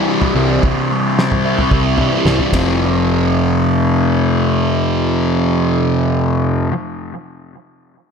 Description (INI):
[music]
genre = psychedelic rock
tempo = 110 BPM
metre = 4/4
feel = straight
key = unclear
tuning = A4 = 440 Hz
[part]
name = fuzz guitar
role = riff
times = 0.0-6.7 s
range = F2 to E4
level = -15 LUFS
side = left 1 dB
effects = distortion, phaser, analog delay
[part]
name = cloth-damped thuddy drum kit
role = drums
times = 0.2-2.7 s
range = kick drum, ride cymbal, snare drum, toms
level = -19 LUFS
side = equal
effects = analog delay
[part]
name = fuzz picked electric bass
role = bass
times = 0.3-6.7 s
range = F1 to C3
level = -18 LUFS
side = equal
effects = overdrive
[sound]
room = light reverb, small room ambience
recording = echo-heavy mix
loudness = -13 LUFS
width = side -6 dB against mid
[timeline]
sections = 0.0-2.8 A section; 2.8-7.1 B section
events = none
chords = 0.0 C; 2.5 F5